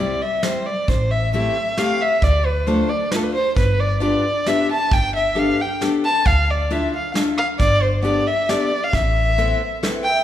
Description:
musette waltz; 134 BPM; 3/4; straight; A4 = 440 Hz
dark violin; melody; 0.0-10.2 s; A4 to A5; -20 LUFS; equal
picked steel-string acoustic guitar; accompaniment; 0.0-10.1 s; G3 to A4; -23 LUFS; left 3 dB
upright bass; bass; 0.0-9.5 s; G1 to D2; -22 LUFS; equal
soft brush drum kit; drums; 0.4-9.9 s; hi-hat, kick drum, snare drum; -23 LUFS; right 1 dB
warm velvety synth lead; second line; 10.1-10.2 s; E5; -22 LUFS; right 5 dB; chorus
moderate recital hall reverb, RT60 1.5 s; recorded in a church or concert hall; -17 LUFS; side -11 dB against mid
0.0-10.2 A section
0.0 C; 0.9 Am7; 2.2 Dm; 3.6 G7; 4.9 Gadd9; 6.3 Dmadd9; 7.6 Gadd9; 8.9 Amadd9
0.44 | 0.89 1.33 1.78 | 2.22 2.67 3.12 | 3.56 4.01 4.46 | 4.91 5.36 5.81 | 6.25 6.70 7.15 | 7.59 8.04 8.48 | 8.93 9.38 9.83

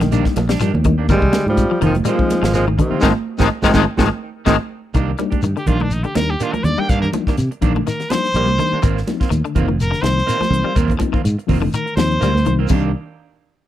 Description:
afrobeat; 124 BPM; 4/4; swing 55% on 16ths; C minor; A4 = 441 Hz
clear tenor saxophone; melody; 0.0-4.5 s; C3 to G3; -22 LUFS; equal; tape echo
bright trombone; second line; 0.0-4.5 s; Eb3 to Ab3; -24 LUFS; right 4 dB
electric guitar at the edge of break-up; arpeggios; 0.0-12.9 s; C3 to Ab3; -23 LUFS; left 8 dB; harmonic tremolo
electric guitar at the edge of break-up; stabs; 0.0-12.9 s; Eb3 to G4; -26 LUFS; right 9 dB; spring reverb
fingered electric bass; bass; 0.0-12.9 s; F1 to C3; -19 LUFS; equal
tight funk drum kit; drums; 0.0-12.8 s; crash cymbal, hi-hat, kick drum, snare drum; -20 LUFS; equal
congas; percussion; 0.0-12.8 s; -24 LUFS; right 5 dB
mellow reed electric piano; accompaniment; 0.1-12.9 s; F3 to Eb4; -24 LUFS; left 10 dB
shekere; percussion; 0.1-12.8 s; -24 LUFS; left 2 dB
brilliant trumpet; melody; 5.6-12.5 s; D4 to G5; -21 LUFS; equal
light reverb; dry, close 1970s-style studio recording; -15 LUFS; side -12 dB against mid
0.0-5.0 A section; 5.0-12.7 B section
band accent 3.0-5.0; reed electric piano fill 4.0-5.0; drum fill 4.3-5.0; trumpet solo 5.0-12.7
0.0 Cm9 (rootless); 1.1 Ab69; 5.0 Cm9 (rootless); 8.8 Ab69 (rootless); 12.7 Cm9
0.12 0.60 | 1.09 1.57 2.05 2.54 | 3.02 3.50 3.99 4.47 | 4.96 5.44 5.92 6.41 | 6.89 7.38 7.86 8.35 | 8.83 9.31 9.80 10.28 | 10.77 11.25 11.73 12.22 | 12.70

